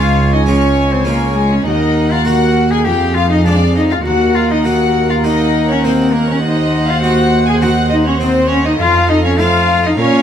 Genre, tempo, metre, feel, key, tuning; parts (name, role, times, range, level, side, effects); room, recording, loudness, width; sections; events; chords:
classical, baroque-style concerto movement with solo episodes; 101 BPM; 4/4; straight; A4 = 440 Hz
warm cello; melody; 0.0-10.2 s; Ab3 to Ab4; -15 LUFS; left 2 dB
warm chamber violin section; melody; 0.0-10.2 s; F5 to Ab5; -26 LUFS; left 1 dB
warm chamber violin section; second line; 0.0-10.2 s; Ab4 to Ab5; -19 LUFS; left 3 dB
dark chamber viola section; accompaniment; 0.0-10.2 s; Ab4 to Db5; -23 LUFS; right 1 dB
harpsichord; accompaniment; 0.0-10.2 s; Db2 to Gb4; -22 LUFS; right 1 dB
dark chamber cello section; bass; 0.0-10.2 s; Db2 to Bb2; -15 LUFS; right 2 dB
moderate recital hall reverb, RT60 1.7 s; -11 LUFS; side -9 dB against mid
0.0-10.2 A section
0.0 Db; 1.7 Ebm; 2.9 Ddim/F; 4.1 Ebm; 6.4 Cdim/Eb; 8.8 F